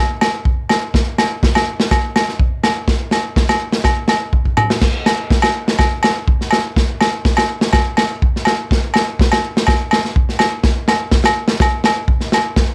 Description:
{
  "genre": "highlife",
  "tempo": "124 BPM",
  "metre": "4/4",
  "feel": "straight",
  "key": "none",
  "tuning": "none",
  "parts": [
    { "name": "crunchy breakbeat drum kit", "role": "drums", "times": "0.2-12.7 s", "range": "crash cymbal, kick drum, snare drum, toms", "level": "-17 LUFS", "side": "equal", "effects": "none" },
    { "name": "agogo bells", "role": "percussion", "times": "0.2-12.5 s", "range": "none", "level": "-20 LUFS", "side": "equal", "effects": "none" }
  ],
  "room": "light reverb",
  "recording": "none",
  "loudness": "-16 LUFS",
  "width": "mono",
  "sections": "0.0-4.8 A section; 4.8-12.7 B section",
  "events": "drum fill 4.3-4.8",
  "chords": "none"
}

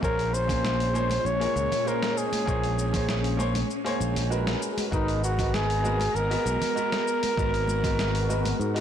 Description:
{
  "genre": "sunset chillout",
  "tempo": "98 BPM",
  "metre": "4/4",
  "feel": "straight",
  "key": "Bb phrygian",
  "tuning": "A4 = 442 Hz",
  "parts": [
    { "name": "mellow flugelhorn", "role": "melody", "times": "0.0-8.8 s", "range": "Eb4 to Db5", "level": "-28 LUFS", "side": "equal", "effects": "digital delay" },
    { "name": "warm concert grand piano", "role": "accompaniment", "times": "0.0-8.8 s", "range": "Ab3 to Db5", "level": "-31 LUFS", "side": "moving between left 2 dB and right 4 dB", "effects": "auto-pan, digital delay" },
    { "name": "soft string machine", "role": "sustained chords", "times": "0.0-8.8 s", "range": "Bb2 to Bb5", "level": "-33 LUFS", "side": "left 2 dB", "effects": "phaser, ensemble chorus" },
    { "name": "modern bright fingered electric bass", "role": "bass", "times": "0.0-8.8 s", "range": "Ab1 to Ab2", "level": "-28 LUFS", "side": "equal", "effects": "none" },
    { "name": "dusty soul sampler-style drum kit", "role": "drums", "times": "0.0-8.8 s", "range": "hi-hat, shaker, snare drum", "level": "-34 LUFS", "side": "left 1 dB", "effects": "none" },
    { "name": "electronic kick drum", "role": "drums", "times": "0.0-8.0 s", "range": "none", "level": "-30 LUFS", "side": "equal", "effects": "none" },
    { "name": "congas", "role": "percussion", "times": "0.5-8.6 s", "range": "none", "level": "-37 LUFS", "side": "right 3 dB", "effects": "none" }
  ],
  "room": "light reverb, digital ambience",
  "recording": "blown-out, overdriven recording, overdrive",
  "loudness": "-23 LUFS",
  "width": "side -9 dB against mid",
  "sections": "0.0-8.8 A section",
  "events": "none",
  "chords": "0.0 Bbm9; 4.6 Abm9"
}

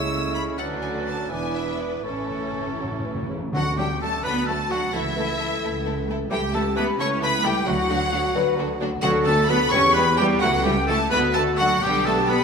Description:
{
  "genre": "quick classical-period movement for symphony orchestra",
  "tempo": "79-90 BPM (dotted quarters)",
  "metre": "6/8",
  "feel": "rubato",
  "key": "A major, D major from 3.5 s",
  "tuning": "A4 = 440 Hz",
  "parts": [
    { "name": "rich studio violin section", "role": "melody", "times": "0.0-12.4 s", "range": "A4 to E6", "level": "-27 LUFS", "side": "left 2 dB", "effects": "none" },
    { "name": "bright clarinet", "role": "second line", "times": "0.0-12.4 s", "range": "B3 to C#5", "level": "-31 LUFS", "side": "left 1 dB", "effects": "none" },
    { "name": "concert flute", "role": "second line", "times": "0.0-12.4 s", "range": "E5 to F#6", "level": "-29 LUFS", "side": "left 2 dB", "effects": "none" },
    { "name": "rich chamber violin section", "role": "second line", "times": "0.0-12.4 s", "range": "A3 to C#5", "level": "-34 LUFS", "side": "left 1 dB", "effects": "none" },
    { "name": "warm oboe", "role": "second line", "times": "0.0-12.4 s", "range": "E4 to C#5", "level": "-29 LUFS", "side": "right 1 dB", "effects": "none" },
    { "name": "dark bassoon", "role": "accompaniment", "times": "0.0-3.4 s", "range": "C#3 to G#3", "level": "-35 LUFS", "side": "right 3 dB", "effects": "none" },
    { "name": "rich chamber viola section", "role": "accompaniment", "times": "0.0-12.4 s", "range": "D3 to E4", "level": "-31 LUFS", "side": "right 2 dB", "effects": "none" },
    { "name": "mellow French horn section", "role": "sustained chords", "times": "0.0-12.4 s", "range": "C#4 to B4", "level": "-28 LUFS", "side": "left 3 dB", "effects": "none" },
    { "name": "clear studio cello section", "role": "bass", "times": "0.0-12.4 s", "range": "E2 to C#4", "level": "-30 LUFS", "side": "right 3 dB", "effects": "none" },
    { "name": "warm chamber double bass section", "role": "bass", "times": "0.0-12.4 s", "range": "E1 to E2", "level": "-29 LUFS", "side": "right 2 dB", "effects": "none" },
    { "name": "timpani", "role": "percussion", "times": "2.0-4.2, 7.7-9.7 s", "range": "A2 to D3", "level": "-31 LUFS", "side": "left 1 dB", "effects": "none" }
  ],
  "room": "wet scoring stage reverb, RT60 1.7 s",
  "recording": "minimal, uncompressed stereo recording",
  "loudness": "-20 LUFS",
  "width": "side -6 dB against mid",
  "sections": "0.0-3.5 A section; 3.5-12.4 B section",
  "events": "timpani fill 2.0-3.5",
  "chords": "0.0 A/C#; 0.6 Bm7/D; 1.3 E5; 2.0 A; 3.5 D; 4.9 A/C#; 6.3 A7/C#; 7.7 D; 9.7 Em; 10.4 A/C#; 11.1 D; 11.8 G/B"
}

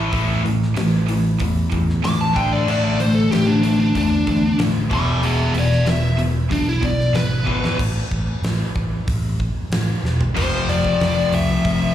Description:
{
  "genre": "hard rock",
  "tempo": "94 BPM",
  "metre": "4/4",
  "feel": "straight",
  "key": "A minor",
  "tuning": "A4 = 441 Hz",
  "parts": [
    { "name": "overdriven semi-hollow guitar", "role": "riff", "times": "0.0-11.9 s", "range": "E2 to D4", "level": "-22 LUFS", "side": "left 6 dB", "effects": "none" },
    { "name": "tight distorted guitar", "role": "riff", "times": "0.0-11.9 s", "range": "E2 to D4", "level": "-26 LUFS", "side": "right 7 dB", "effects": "distortion, slapback echo" },
    { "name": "overdriven picked electric bass", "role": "bass", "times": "0.0-11.9 s", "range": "E1 to E2", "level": "-21 LUFS", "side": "right 1 dB", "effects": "none" },
    { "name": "huge arena drum kit", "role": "drums", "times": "0.1-11.8 s", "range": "crash cymbal, hi-hat, kick drum, snare drum, toms", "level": "-25 LUFS", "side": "right 1 dB", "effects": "none" },
    { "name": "biting lead guitar", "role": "melody", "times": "2.0-11.9 s", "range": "D4 to D6", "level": "-22 LUFS", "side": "left 1 dB", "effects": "overdrive, plate reverb, slapback echo, digital delay" }
  ],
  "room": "light reverb",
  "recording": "live gig heard through the venue's PA, club reverb",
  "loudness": "-16 LUFS",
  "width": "side -11 dB against mid",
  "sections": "0.0-7.8 A section; 7.8-10.4 B section; 10.4-11.9 C section",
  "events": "lead electric guitar solo 0.0-7.8; drum fill 7.5-7.8, 10.0-10.4",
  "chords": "0.0 A5; 2.4 D5/A; 4.9 E; 7.8 A5; 10.4 F5"
}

